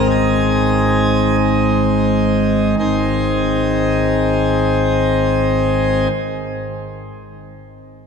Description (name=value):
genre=classical, chorale-style piece for pipe organ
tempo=42-49 BPM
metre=3/4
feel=straight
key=Ab major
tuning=A4 = 443 Hz
part: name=pipe organ, plenum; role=solo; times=0.0-6.1 s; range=Ab1 to Ab5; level=-14 LUFS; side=equal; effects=none
room=wet cathedral reverb, RT60 4.8 s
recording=none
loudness=-14 LUFS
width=side -6 dB against mid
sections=0.0-2.8 A section; 2.8-7.1 B section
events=slowing down 0.0-2.8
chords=0.0 Ab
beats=0.10 1.39 | 2.79 4.21 5.64